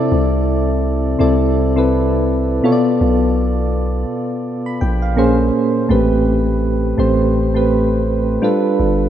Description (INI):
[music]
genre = contemporary R&B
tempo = 83 BPM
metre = 4/4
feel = swing 58% on 16ths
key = A minor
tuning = A4 = 441 Hz
[part]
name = soft electric-piano-like synth keys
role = accompaniment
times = 0.0-9.1 s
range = A2 to B5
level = -15 LUFS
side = equal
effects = chorus, tremolo
[part]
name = long sustained 808-style bass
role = bass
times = 0.1-9.1 s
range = G1 to C2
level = -18 LUFS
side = equal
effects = none
[sound]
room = moderate lush hall reverb, RT60 3.1 s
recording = rough home demo mix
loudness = -14 LUFS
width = side -10 dB against mid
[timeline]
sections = 0.0-9.1 A section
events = none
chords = 0.0 C6; 2.6 Bm7b5; 5.2 Bbm7; 5.9 Am7; 8.4 G7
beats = | 0.12 0.84 1.56 2.28 | 3.01 3.73 4.45 5.17 | 5.90 6.62 7.34 8.07 | 8.79